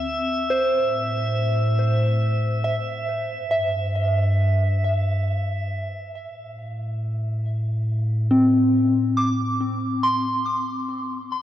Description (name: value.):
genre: ambient.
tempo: 69 BPM.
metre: 3/4.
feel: straight.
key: unclear.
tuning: A4 = 440 Hz.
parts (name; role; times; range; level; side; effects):
soft synth bell; arpeggios; 0.0-11.1 s; C4 to D6; -23 LUFS; equal; chorus, ping-pong delay.
deep rumbling drone; bass; 0.0-11.4 s; D2 to A2; -24 LUFS; equal; built-in reverb.
drifting glass-harmonics texture; texture; 0.0-5.7 s; E5; -29 LUFS; equal; chorus, built-in reverb.
room: wet cathedral reverb, RT60 5.5 s.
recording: worn, warbling old tape, cassette tape, warbly pitch drift.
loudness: -20 LUFS.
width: side -12 dB against mid.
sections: 0.0-5.7 A section; 5.7-11.4 B section.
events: none.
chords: 0.0 Dsus2; 0.5 Am; 3.1 Gsus4; 5.7 Am; 10.9 N.C..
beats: | 0.51 1.36 2.22 | 3.08 3.94 4.82 | 5.70 6.57 7.44 | 8.31 9.17 10.04 | 10.89.